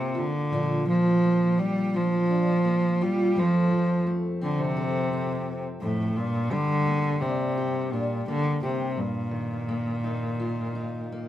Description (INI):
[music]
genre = acoustic folk-pop ballad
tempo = 85 BPM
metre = 4/4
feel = straight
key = Bb major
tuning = A4 = 440 Hz
[part]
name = rich cello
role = melody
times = 0.0-11.3 s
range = A2 to G3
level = -24 LUFS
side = equal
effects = none
[part]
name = fingerpicked steel-string acoustic guitar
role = accompaniment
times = 0.0-11.3 s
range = F2 to A4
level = -30 LUFS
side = equal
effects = none
[sound]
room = wet studio ambience, RT60 0.4 s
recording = band playing live in one room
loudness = -23 LUFS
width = side -12 dB against mid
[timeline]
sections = 0.0-11.3 A section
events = none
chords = 0.5 Bb; 3.3 F; 6.2 Gm; 9.0 Ebadd9/G